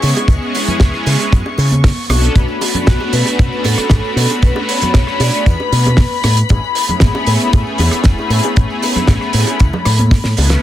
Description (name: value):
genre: nu-disco, nu disco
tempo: 116 BPM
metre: 4/4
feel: straight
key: unclear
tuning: A4 = 439 Hz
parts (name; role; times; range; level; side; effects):
- warm analog pad; accompaniment; 0.0-10.6 s; G#3 to B4; -20 LUFS; equal; chorus, analog delay
- warm studio string section; sustained chords; 0.0-10.6 s; B5 to C#6; -21 LUFS; left 8 dB; sidechain pumping
- fingered electric bass with an envelope filter; bass; 0.0-10.6 s; E1 to C#3; -15 LUFS; equal; none
- damped 70s drum kit; drums; 0.0-10.6 s; hi-hat, rim click, snare drum; -19 LUFS; right 2 dB; soft clipping on snare
- tambourine, bongos and congas; percussion; 0.0-10.6 s; none; -24 LUFS; right 2 dB; none
- kick drum; drums; 0.3-10.2 s; none; -11 LUFS; equal; none
- vibraphone with hard mallets; melody; 2.1-6.2 s; F#4 to D5; -23 LUFS; equal; analog delay
room: small room reverb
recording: dense, heavily limited modern master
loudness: -11 LUFS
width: side -12 dB against mid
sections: 0.0-10.6 A section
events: drop 0.0-10.6; drum fill 10.1-10.6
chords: 0.0 C#m7; 2.1 Bm7; 6.5 Amaj7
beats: | 0.29 0.81 1.32 1.84 | 2.36 2.88 3.39 3.91 | 4.43 4.95 5.46 5.98 | 6.50 7.01 7.53 8.05 | 8.57 9.08 9.60 10.12